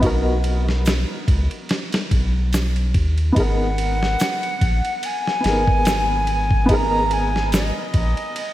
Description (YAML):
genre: trip hop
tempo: 72 BPM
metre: 4/4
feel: swing 55% on 16ths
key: G# minor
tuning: A4 = 440 Hz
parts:
  - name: dark upright piano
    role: accompaniment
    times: 0.0-8.5 s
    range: B3 to A#4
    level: -24 LUFS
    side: equal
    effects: tremolo, tape echo
  - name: round analog bass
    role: bass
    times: 0.0-8.1 s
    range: G#1 to D#2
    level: -21 LUFS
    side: equal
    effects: none
  - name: dusty soul sampler-style drum kit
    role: drums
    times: 0.0-8.5 s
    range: kick drum, ride cymbal, snare drum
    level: -22 LUFS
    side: equal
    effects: none
  - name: egg shaker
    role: percussion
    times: 0.9-7.7 s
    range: none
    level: -38 LUFS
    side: left 2 dB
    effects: none
  - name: bright reedy baroque flute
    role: melody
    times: 3.4-8.5 s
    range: D#5 to A#5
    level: -22 LUFS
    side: equal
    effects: tape echo
room: moderate lush hall reverb, RT60 2.4 s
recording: dreamy mix soaked in reverb, vinyl crackle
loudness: -17 LUFS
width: side -14 dB against mid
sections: 0.0-8.5 A section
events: none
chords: 0.0 Bmaj7; 3.4 G#madd9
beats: | 0.03 0.86 1.70 2.53 | 3.36 4.20 5.03 5.86 | 6.70 7.53 8.36